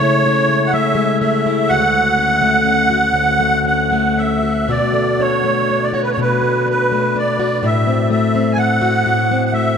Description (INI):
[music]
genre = celtic folk, Celtic slow air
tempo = 62 BPM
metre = 3/4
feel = rubato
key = unclear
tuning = A4 = 440 Hz
[part]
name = musette accordion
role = melody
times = 0.0-9.8 s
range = B4 to G#5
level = -16 LUFS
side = right 2 dB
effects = none
[part]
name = picked plugged-in steel-string acoustic guitar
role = accompaniment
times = 0.0-9.8 s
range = D2 to F#4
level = -17 LUFS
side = left 3 dB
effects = none
[sound]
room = wet cathedral reverb, RT60 7.0 s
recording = none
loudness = -13 LUFS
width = side -7 dB against mid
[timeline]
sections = 0.0-9.8 A section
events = none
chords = 0.0 Amaj7/C#; 1.7 Dmaj7; 4.7 Bm7; 7.6 Am6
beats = 0.74 | 1.70 2.67 3.68 | 4.71 5.70 6.67 | 7.63 8.58 9.53